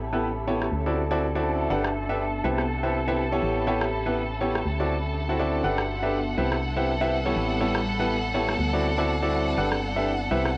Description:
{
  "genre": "piano house",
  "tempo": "122 BPM",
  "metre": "4/4",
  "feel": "swing 58% on 16ths",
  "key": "G major",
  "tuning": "A4 = 440 Hz",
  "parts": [
    { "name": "clear chamber violin section", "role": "sustained chords", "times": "0.0-10.6 s", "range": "A4 to A5", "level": "-34 LUFS", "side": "equal", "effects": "low-pass filter, cassette tape" },
    { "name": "organ-like FM bass", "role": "bass", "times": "0.0-10.6 s", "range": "G1 to D2", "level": "-32 LUFS", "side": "equal", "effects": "none" },
    { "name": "ethereal airy pad", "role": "texture", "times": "0.0-10.6 s", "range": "G3 to B5", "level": "-35 LUFS", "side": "equal", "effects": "ensemble chorus, built-in reverb, cassette tape" },
    { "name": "bright baby grand piano", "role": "riff", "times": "0.1-10.5 s", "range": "B3 to F#5", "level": "-29 LUFS", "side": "equal", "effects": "cassette tape, tape echo" },
    { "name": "electronic rim click", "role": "drums", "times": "0.6-10.5 s", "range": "none", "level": "-35 LUFS", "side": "equal", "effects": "cassette tape" }
  ],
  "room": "moderate spring reverb, RT60 2.5 s",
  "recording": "home recording on cassette",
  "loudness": "-26 LUFS",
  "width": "mono",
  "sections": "0.0-10.6 A section",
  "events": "filter sweep on violin section 0.0-10.6",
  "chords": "0.0 A9; 0.7 D9; 1.7 Gmaj9; 2.4 Cmaj7; 3.4 A9; 4.7 D9; 5.6 Gmaj9; 6.4 Cmaj7; 7.4 A9; 8.6 D9; 9.6 Gmaj9"
}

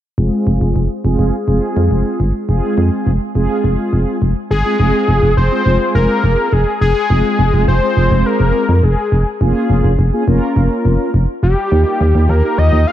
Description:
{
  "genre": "synth-pop",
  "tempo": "104 BPM",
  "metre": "4/4",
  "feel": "straight",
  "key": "F minor",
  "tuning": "A4 = 441 Hz",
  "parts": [
    { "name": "mellow synth brass", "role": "accompaniment", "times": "0.2-12.9 s", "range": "Ab3 to Bb4", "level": "-18 LUFS", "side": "right 1 dB", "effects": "chorus, low-pass filter" },
    { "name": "solid FM bass", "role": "bass", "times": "0.2-12.9 s", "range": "F1 to F2", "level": "-13 LUFS", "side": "equal", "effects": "none" },
    { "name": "fat analog lead", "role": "melody", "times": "4.5-12.9 s", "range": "G4 to F5", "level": "-16 LUFS", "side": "left 2 dB", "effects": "ping-pong delay" }
  ],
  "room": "moderate lush hall reverb, RT60 2.4 s",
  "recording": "dark, warm production",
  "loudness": "-12 LUFS",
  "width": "side -12 dB against mid",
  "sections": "0.2-4.8 A section; 4.8-12.9 B section",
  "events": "filter sweep on analog polysynth 0.2-4.8",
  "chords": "0.2 Fm; 9.4 Bbm7/F; 11.7 Ebadd9"
}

